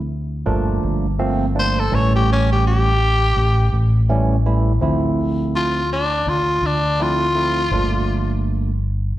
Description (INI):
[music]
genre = straight-eighth soul blues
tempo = 83 BPM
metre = 4/4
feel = swing 55% on 16ths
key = D minor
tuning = A4 = 440 Hz
[part]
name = fingered electric bass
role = bass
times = 0.0-9.1 s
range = G1 to D2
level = -19 LUFS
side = equal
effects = none
[part]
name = barky tine electric piano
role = accompaniment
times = 0.5-8.7 s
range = E3 to E4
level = -22 LUFS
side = right 3 dB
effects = phaser, slapback echo
[part]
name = growling tenor saxophone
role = melody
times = 1.6-8.4 s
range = C#4 to C#5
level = -19 LUFS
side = left 1 dB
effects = slapback echo
[sound]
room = light reverb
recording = live gig heard through the venue's PA, recital hall reverb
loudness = -16 LUFS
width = side -14 dB against mid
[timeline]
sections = 0.0-4.8 A section; 4.8-9.2 B section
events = tenor saxophone solo 4.8-9.2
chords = 0.5 Gm9; 1.9 A7; 4.8 Dm9; 7.7 Gm9